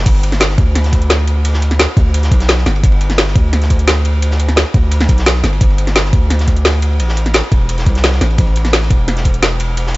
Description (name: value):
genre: liquid drum and bass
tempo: 173 BPM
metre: 4/4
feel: straight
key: G major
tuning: A4 = 441 Hz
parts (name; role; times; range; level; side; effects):
- long sustained 808-style bass; bass; 0.0-10.0 s; E1 to D2; -14 LUFS; equal; none
- crunchy breakbeat drum kit; drums; 0.1-10.0 s; ride cymbal, snare drum; -23 LUFS; equal; high-pass filter on cymbals, high-pass filter on snare, high-pass filter on room
- electronic kick drum; drums; 0.1-9.3 s; none; -12 LUFS; equal; overdrive
- garage drum kit; drums; 0.1-10.0 s; crash cymbal, hi-hat, snare drum; -17 LUFS; equal; overdrive
room: small room reverb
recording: dark, warm production, nothing above 7.8 kHz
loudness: -11 LUFS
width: side -20 dB against mid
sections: 0.1-10.0 A section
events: drop 0.1-10.0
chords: none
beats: | 0.06 0.41 0.76 1.10 | 1.45 1.79 2.14 2.49 | 2.84 3.18 3.53 3.88 | 4.22 4.57 4.92 5.26 | 5.61 5.96 6.30 6.65 | 7.00 7.34 7.69 8.04 | 8.38 8.73 9.08 9.43 | 9.77